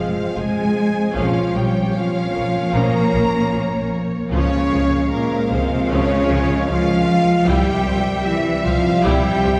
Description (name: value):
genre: cinematic, hybrid orchestral and electronic film score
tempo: 76 BPM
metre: 4/4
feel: straight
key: unclear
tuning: A4 = 440 Hz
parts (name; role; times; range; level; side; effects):
- warm symphonic violin section; melody; 0.0-9.6 s; C5 to F5; -33 LUFS; equal; none
- warm symphonic violin section; second line; 0.0-9.6 s; Bb4 to Bb5; -28 LUFS; equal; none
- warm symphonic viola section; accompaniment; 0.0-9.5 s; F3 to C5; -30 LUFS; equal; none
- granular cloud pad; sustained chords; 0.0-9.6 s; F3 to C5; -30 LUFS; equal; none
- mellow trombone section; sustained chords; 0.0-9.6 s; C3 to Db4; -29 LUFS; equal; none
- warm French horn section; sustained chords; 0.0-9.6 s; Bb3 to Bb4; -25 LUFS; equal; none
- dark symphonic double bass section; bass; 0.0-9.5 s; F1 to Db2; -26 LUFS; equal; none
- rich symphonic cello section; bass; 0.0-9.6 s; Bb2 to Bb3; -24 LUFS; equal; none
room: wet concert hall reverb, RT60 2.3 s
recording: heard from further back in the room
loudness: -18 LUFS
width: mono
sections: 0.0-9.6 A section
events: none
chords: 0.0 Fm; 1.2 Bbm; 4.3 Db; 7.5 C